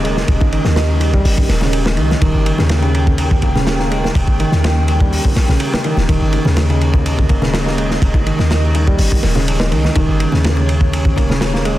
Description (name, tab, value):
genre	breakbeat, breaks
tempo	124 BPM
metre	4/4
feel	straight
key	unclear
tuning	A4 = 440 Hz
part	dark analog pad	sustained chords	0.0-11.8 s	Db4 to G5	-23 LUFS	right 1 dB	chorus, sidechain pumping
part	barky reed electric piano	riff	0.0-11.8 s	Db3 to Eb4	-19 LUFS	equal	overdrive, vintage 12-bit sampler grit, ping-pong delay
part	warm 808-style bass	bass	0.0-11.8 s	Eb1 to Eb2	-16 LUFS	equal	none
part	crunchy breakbeat drum kit	drums	0.0-11.8 s	hi-hat, kick drum, ride cymbal, snare drum	-17 LUFS	equal	none
part	bongos and congas	percussion	0.2-11.6 s	none	-27 LUFS	left 3 dB	none
room	studio ambience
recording	dense, heavily limited modern master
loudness	-12 LUFS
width	side -15 dB against mid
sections	0.0-11.8 A section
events	none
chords	0.0 Eb7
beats	| 0.28 0.77 1.25 1.74 | 2.22 2.70 3.19 3.67 | 4.16 4.64 5.12 5.61 | 6.09 6.57 7.06 7.54 | 8.03 8.51 8.99 9.48 | 9.96 10.45 10.93 11.41